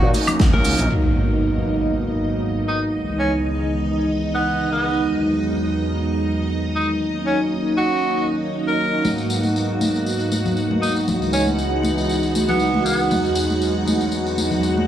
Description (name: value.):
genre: nu-disco, nu disco.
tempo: 118 BPM.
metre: 4/4.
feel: swing 55% on 16ths.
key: G# minor.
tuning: A4 = 440 Hz.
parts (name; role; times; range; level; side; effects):
bright tenor saxophone; melody; 0.0-13.2 s; B3 to A#4; -25 LUFS; right 2 dB; dub echo.
warm analog pad; accompaniment; 0.0-14.9 s; C#2 to D#4; -21 LUFS; right 1 dB; chorus.
slap bass with an envelope filter; bass; 0.0-0.9 s; A#1 to A#2; -20 LUFS; equal; none.
damped 70s drum kit; drums; 0.1-0.9 s; cabasa, hi-hat, snare drum, woodblock; -21 LUFS; right 1 dB; none.
congas and tambourine; percussion; 0.1-0.6, 9.0-14.9 s; none; -24 LUFS; left 2 dB; none.
electronic kick drum; drums; 0.4-0.5 s; none; -17 LUFS; equal; none.
string machine, full ensemble; sustained chords; 0.9-14.9 s; D#4 to F#5; -26 LUFS; right 1 dB; phaser, ensemble chorus, sidechain pumping.
impact; sound effects; 0.9-2.9 s; none; -24 LUFS; equal; none.
room: light reverb.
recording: studio reverb.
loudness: -18 LUFS.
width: side -10 dB against mid.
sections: 0.9-14.9 A section.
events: band accent 0.4; impact 0.9-2.9; filter sweep on analog synth pad 0.9-14.9.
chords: 0.0 D#m7; 0.9 G#m7; 2.9 C#m7; 5.0 Emaj7; 7.0 D#m7; 9.0 G#m7; 11.1 C#m7; 13.1 Emaj7.